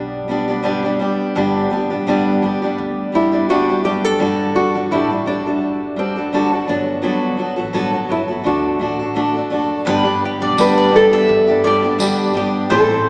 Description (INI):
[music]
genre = acoustic pop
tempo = 84 BPM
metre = 4/4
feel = swing 55% on 16ths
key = G major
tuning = A4 = 440 Hz
[part]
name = fingerpicked steel-string acoustic guitar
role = accompaniment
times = 0.0-13.1 s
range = G2 to A4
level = -20 LUFS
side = equal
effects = none
[part]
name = upright bass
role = bass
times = 0.0-13.1 s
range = F#1 to G2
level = -34 LUFS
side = equal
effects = none
[part]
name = nylon-string guitar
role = melody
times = 3.2-13.1 s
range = C4 to B4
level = -20 LUFS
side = equal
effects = none
[part]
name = mandolin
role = arpeggios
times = 9.9-13.0 s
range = B4 to E5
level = -23 LUFS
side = equal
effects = none
[part]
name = tambourine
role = percussion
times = 10.6-12.2 s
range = none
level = -32 LUFS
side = equal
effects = none
[sound]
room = wet church reverb, RT60 2.9 s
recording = recorded in a church or concert hall, small speaker sound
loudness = -17 LUFS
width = mono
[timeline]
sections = 0.0-9.9 A section; 9.9-13.1 B section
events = none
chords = 0.0 Bm; 4.2 D; 6.7 Bm7/G; 8.5 D; 9.9 G